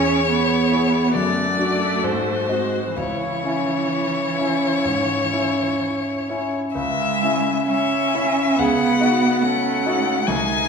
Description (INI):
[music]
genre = classical, slow romantic movement for piano quartet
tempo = 61-72 BPM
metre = 4/4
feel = rubato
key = C# minor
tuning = A4 = 441 Hz
[part]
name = rich violin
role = melody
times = 0.0-10.7 s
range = B#4 to G#5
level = -22 LUFS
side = left 5 dB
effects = none
[part]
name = rich cello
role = second line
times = 0.0-10.7 s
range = E3 to C#4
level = -22 LUFS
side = right 4 dB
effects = none
[part]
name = clear concert grand piano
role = accompaniment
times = 0.0-10.7 s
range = B#1 to E5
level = -24 LUFS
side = left 1 dB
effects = none
[part]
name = rich viola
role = accompaniment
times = 0.0-10.7 s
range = C#4 to G#4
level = -29 LUFS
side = right 2 dB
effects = none
[sound]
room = wet recital hall reverb, RT60 1.3 s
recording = recorded in a church or concert hall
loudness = -18 LUFS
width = side -6 dB against mid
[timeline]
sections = 0.0-6.7 A section; 6.7-10.7 A section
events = none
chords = 0.0 C#m/E; 1.1 D/F#; 2.0 G#7b9; 3.0 C#m; 8.6 D#m7b5/C#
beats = 0.28 1.15 2.03 | 2.96 3.91 4.85 5.80 | 6.75 7.70 8.57 9.43 | 10.27